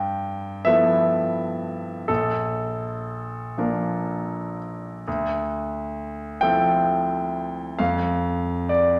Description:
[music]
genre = classical, impressionist solo piano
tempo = 39-45 BPM (dotted quarters)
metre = 6/8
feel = rubato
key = D minor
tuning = A4 = 440 Hz
[part]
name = clear grand piano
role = solo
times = 0.0-9.0 s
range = Bb1 to G5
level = -24 LUFS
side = equal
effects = none
[sound]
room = wet recital hall reverb, RT60 1.6 s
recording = none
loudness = -25 LUFS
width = mono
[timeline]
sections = 0.0-9.0 A section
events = none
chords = 0.0 G13; 2.1 Bbmaj7; 5.1 Dm9; 7.8 N.C.

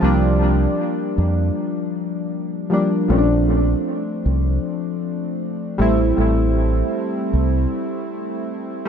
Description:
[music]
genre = contemporary R&B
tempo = 78 BPM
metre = 4/4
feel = swing 54% on 16ths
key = unclear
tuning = A4 = 440 Hz
[part]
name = warm analog keys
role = accompaniment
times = 0.0-8.9 s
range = F3 to E4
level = -20 LUFS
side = equal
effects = chorus, tape echo
[part]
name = deep dub fingered electric bass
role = bass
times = 0.0-7.7 s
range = A1 to F2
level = -18 LUFS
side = equal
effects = none
[sound]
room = moderate plate reverb, RT60 3.2 s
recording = echo-heavy mix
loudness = -18 LUFS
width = side -7 dB against mid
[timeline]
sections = 0.0-8.9 A section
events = none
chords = 0.0 C7sus4; 3.1 Bbmaj9; 5.8 Am7

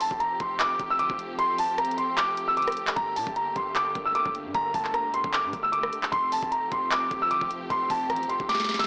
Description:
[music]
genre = hip hop, trap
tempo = 152 BPM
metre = 4/4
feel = half-time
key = unclear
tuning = A4 = 440 Hz
[part]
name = dark baby grand piano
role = melody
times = 0.0-8.9 s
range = A5 to E6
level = -28 LUFS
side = equal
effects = none
[part]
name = warm studio string section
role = sustained chords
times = 0.0-8.9 s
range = D3 to G4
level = -39 LUFS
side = equal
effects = none
[part]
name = hard-hitting 808-style bass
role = bass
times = 0.0-8.9 s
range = F1 to Bb2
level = -46 LUFS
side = equal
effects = none
[part]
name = trap drum kit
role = drums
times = 0.0-8.9 s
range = handclaps, hi-hat, kick drum, rim click, snare drum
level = -33 LUFS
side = equal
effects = soft clipping on snare
[sound]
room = light reverb, digital ambience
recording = blown-out, overdriven recording, overdrive, small speaker sound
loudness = -27 LUFS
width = mono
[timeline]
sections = 0.0-8.9 A section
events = kick muted 1.4-3.0; drum fill 8.5-8.9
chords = 0.0 Fadd9; 3.0 Gmadd9; 6.1 Fadd9

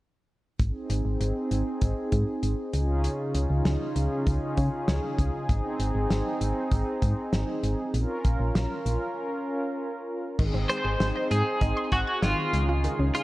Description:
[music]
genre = synth-pop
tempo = 98 BPM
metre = 4/4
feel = straight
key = Ab major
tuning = A4 = 440 Hz
[part]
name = brassy analog pad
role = sustained chords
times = 0.6-13.2 s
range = Db3 to Bb4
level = -30 LUFS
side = equal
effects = chorus, tremolo
[part]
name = solid FM bass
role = bass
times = 0.6-13.1 s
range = Ab1 to Db3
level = -26 LUFS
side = equal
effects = none
[part]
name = damped 70s drum kit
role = drums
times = 0.6-13.2 s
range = crash cymbal, hi-hat, kick drum, snare drum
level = -29 LUFS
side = equal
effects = none
[part]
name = wide unison pluck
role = arpeggios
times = 10.4-13.2 s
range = Eb3 to Ab6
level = -33 LUFS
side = left 1 dB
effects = digital delay
[part]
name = twelve-string electric guitar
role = melody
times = 10.7-13.2 s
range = F4 to C5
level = -27 LUFS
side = equal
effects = tremolo, digital delay
[sound]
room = moderate lush hall reverb, RT60 1.9 s, studio ambience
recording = worn, warbling old tape, cassette tape, warbly pitch drift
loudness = -24 LUFS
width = side -18 dB against mid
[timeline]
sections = 0.6-10.4 A section; 10.4-13.2 B section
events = break 9.2-10.4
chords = 0.6 Ab; 2.7 Dbadd9; 5.5 Ab; 7.9 Bbm; 10.4 Ab; 12.5 Dbadd9

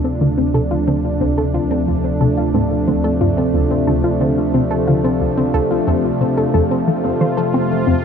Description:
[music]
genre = ambient, sequencer-driven space music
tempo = 90 BPM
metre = 4/4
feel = straight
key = D minor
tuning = A4 = 439 Hz
[part]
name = sweeping resonant pad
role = sustained chords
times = 0.0-8.0 s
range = C3 to F4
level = -18 LUFS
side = equal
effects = chorus
[part]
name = soft round pluck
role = arpeggios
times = 0.0-8.0 s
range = C4 to C5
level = -21 LUFS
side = left 2 dB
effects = chorus, auto-pan, ping-pong delay
[part]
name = resonant blip pluck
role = riff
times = 0.0-8.0 s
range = D2 to C4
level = -20 LUFS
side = equal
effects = chorus, ping-pong delay
[part]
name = round analog bass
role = bass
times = 0.0-8.0 s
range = D2 to F2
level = -26 LUFS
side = equal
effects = none
[sound]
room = wet huge ambient reverb, RT60 7.0 s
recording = faint mains hum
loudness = -14 LUFS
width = side -7 dB against mid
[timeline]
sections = 0.0-8.0 A section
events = filter sweep on synth arpeggio sound 0.0-8.0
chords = 0.0 Dm7; 6.5 F

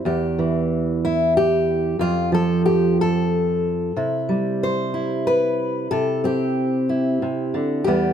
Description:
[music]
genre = folk, solo fingerstyle acoustic guitar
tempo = 93 BPM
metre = 3/4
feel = straight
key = unclear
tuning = A4 = 439 Hz
[part]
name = fingerpicked steel-string acoustic guitar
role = solo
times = 0.0-8.1 s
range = E2 to C5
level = -18 LUFS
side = equal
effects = none
[sound]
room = light reverb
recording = none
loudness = -18 LUFS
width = side -8 dB against mid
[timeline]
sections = 0.0-8.1 A section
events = none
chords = 0.1 Em; 2.0 N.C.; 4.0 C; 5.9 C69

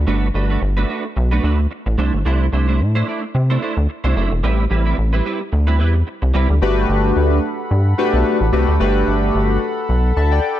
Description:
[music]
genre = funk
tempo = 110 BPM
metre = 4/4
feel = swing 56% on 16ths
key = unclear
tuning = A4 = 440 Hz
[part]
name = rubbery square bass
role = bass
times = 0.0-10.4 s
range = E1 to C3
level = -16 LUFS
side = equal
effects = none
[part]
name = clean electric guitar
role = riff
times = 0.1-6.5 s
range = G3 to D5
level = -23 LUFS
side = right 4 dB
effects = ensemble chorus
[part]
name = chorused polysynth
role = accompaniment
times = 6.6-10.6 s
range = A3 to A5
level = -18 LUFS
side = left 2 dB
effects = none
[part]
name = warm analog pad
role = sustained chords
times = 6.6-10.6 s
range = A4 to B5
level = -25 LUFS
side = left 2 dB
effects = chorus
[sound]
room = light reverb, digital ambience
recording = dark, warm production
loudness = -15 LUFS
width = side -12 dB against mid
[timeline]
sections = 0.0-6.6 A section; 6.6-10.6 B section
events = none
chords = 0.0 Gmaj9; 2.0 C69; 4.4 Am9; 6.6 Gmaj9

